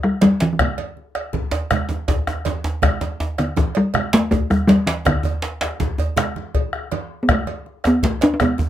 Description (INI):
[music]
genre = west african traditional, West African drum ensemble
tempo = 108 BPM (dotted quarters)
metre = 12/8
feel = straight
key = unclear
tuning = A4 = 442 Hz
[part]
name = talking drum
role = melody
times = 0.0-8.7 s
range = D3 to D4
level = -17 LUFS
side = left 1 dB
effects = none
[part]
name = bombo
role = percussion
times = 0.0-8.6 s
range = none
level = -22 LUFS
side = left 2 dB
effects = none
[part]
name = djembe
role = percussion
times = 0.0-8.7 s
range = none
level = -30 LUFS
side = left 5 dB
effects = none
[part]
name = congas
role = percussion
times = 0.2-8.7 s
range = none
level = -27 LUFS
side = right 7 dB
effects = none
[part]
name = cowbell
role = percussion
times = 0.2-8.6 s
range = none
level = -29 LUFS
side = right 9 dB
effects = none
[part]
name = djembe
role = percussion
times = 0.2-8.7 s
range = none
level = -24 LUFS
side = right 2 dB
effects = none
[sound]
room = light reverb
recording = none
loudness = -17 LUFS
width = side -12 dB against mid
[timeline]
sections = 0.0-8.7 A section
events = none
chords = none